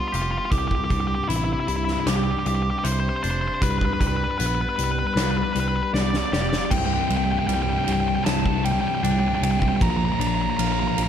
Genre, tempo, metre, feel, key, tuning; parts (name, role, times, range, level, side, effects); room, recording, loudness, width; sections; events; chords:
post-rock; 77 BPM; 4/4; straight; A4 = 439 Hz
nasal lead guitar with a parked wah; melody; 0.0-11.1 s; E4 to Bb5; -26 LUFS; left 2 dB; overdrive, digital delay
twangy electric guitar; arpeggios; 0.0-11.1 s; C2 to G4; -29 LUFS; left 4 dB; digital delay
barky tine electric piano; bass; 0.1-11.1 s; F1 to C2; -26 LUFS; right 1 dB; auto-pan
huge arena drum kit; drums; 0.1-11.1 s; crash cymbal, hi-hat, kick drum, ride cymbal, snare drum; -27 LUFS; equal
thick fuzz guitar; riff; 6.7-11.1 s; C2 to F3; -25 LUFS; right 2 dB; distortion
small room ambience; dark, warm production; -20 LUFS; side -9 dB against mid
0.0-6.7 A section; 6.7-11.1 B section
drum fill 5.9-6.7; build-up 6.7-11.1
0.0 G7; 0.5 Cadd9; 3.6 G; 6.7 Csus2; 9.8 Bb